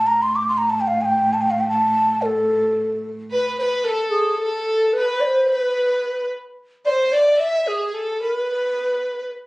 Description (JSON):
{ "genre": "arabic", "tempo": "110 BPM", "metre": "3/4", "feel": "straight", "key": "A maqam kurd", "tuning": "A4 = 440 Hz", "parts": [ { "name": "breathy mellow ney", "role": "melody", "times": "0.0-9.3 s", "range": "G#4 to D6", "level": "-18 LUFS", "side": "equal", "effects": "none" }, { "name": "warm cello", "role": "drone", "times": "0.0-3.4 s", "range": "A2", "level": "-28 LUFS", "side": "right 2 dB", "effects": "none" }, { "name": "rich chamber violin section", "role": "second line", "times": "3.3-9.3 s", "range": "G#4 to E5", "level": "-26 LUFS", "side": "equal", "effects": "none" } ], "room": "moderate small room reverb, RT60 0.5 s", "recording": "recorded on a phone in the room, club reverb, compression, nothing above 10.5 kHz", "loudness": "-18 LUFS", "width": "side -22 dB against mid", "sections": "0.0-3.3 A section; 3.3-9.5 B section", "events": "none", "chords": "none" }